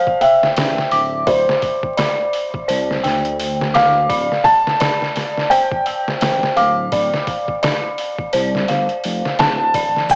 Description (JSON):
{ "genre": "trip hop", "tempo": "85 BPM", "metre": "4/4", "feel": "swing 59% on 16ths", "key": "unclear", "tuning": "A4 = 443 Hz", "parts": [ { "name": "felt-muted upright piano", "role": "melody", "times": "0.0-10.2 s", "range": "C5 to A5", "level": "-20 LUFS", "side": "equal", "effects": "cassette tape, dub echo" }, { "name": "dark detuned synth bell", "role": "arpeggios", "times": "0.0-10.2 s", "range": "C5 to D6", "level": "-22 LUFS", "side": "equal", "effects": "chorus, vintage 12-bit sampler grit, cassette tape, tape echo" }, { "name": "trip hop sampler-style drum kit", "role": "drums", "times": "0.1-10.2 s", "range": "hi-hat, kick drum, snare drum", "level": "-25 LUFS", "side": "equal", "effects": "cassette tape" }, { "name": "dark detuned saw bass", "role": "bass", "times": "0.6-9.9 s", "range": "D1 to D2", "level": "-27 LUFS", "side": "equal", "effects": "none" }, { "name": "egg shaker and triangle", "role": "percussion", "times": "9.7-10.2 s", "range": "none", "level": "-38 LUFS", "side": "equal", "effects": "none" } ], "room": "moderate spring reverb, RT60 1.9 s", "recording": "home recording on cassette, vinyl crackle, small speaker sound", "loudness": "-17 LUFS", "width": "mono", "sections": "0.0-10.2 A section", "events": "none", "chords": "0.0 Dsus2; 4.1 Fadd9/D", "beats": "0.57 | 1.27 1.98 2.69 3.39 | 4.10 4.80 5.51 6.22 | 6.92 7.63 8.33 9.04 | 9.74" }